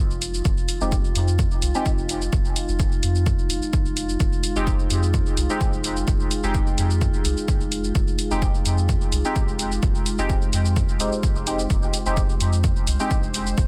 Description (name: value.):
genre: dub techno.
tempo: 128 BPM.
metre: 4/4.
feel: straight.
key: F dorian.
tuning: A4 = 441 Hz.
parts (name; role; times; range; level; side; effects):
dark analog pad; sustained chords; 0.0-13.7 s; Ab3 to Ab4; -33 LUFS; equal; chorus, sidechain pumping.
drifting glass-harmonics texture; texture; 0.1-13.7 s; F4 to C5; -38 LUFS; equal; chorus, built-in reverb, sidechain pumping.
soft dub sub bass; bass; 0.1-13.7 s; F1 to F2; -26 LUFS; equal; sidechain pumping.
electronic cabasa and hi-hat; drums; 0.1-13.7 s; none; -32 LUFS; equal; none.
electronic kick drum; drums; 0.5-13.7 s; none; -25 LUFS; equal; none.
resonant sweep polysynth; stabs; 0.8-13.1 s; Ab3 to G4; -31 LUFS; equal; chorus, phaser, sidechain pumping, dub echo.
room: little or no reverb.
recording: dense, heavily limited modern master.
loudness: -22 LUFS.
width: mono.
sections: 0.0-13.7 A section.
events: filter sweep on analog polysynth 0.0-13.7.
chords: 0.0 Fm7.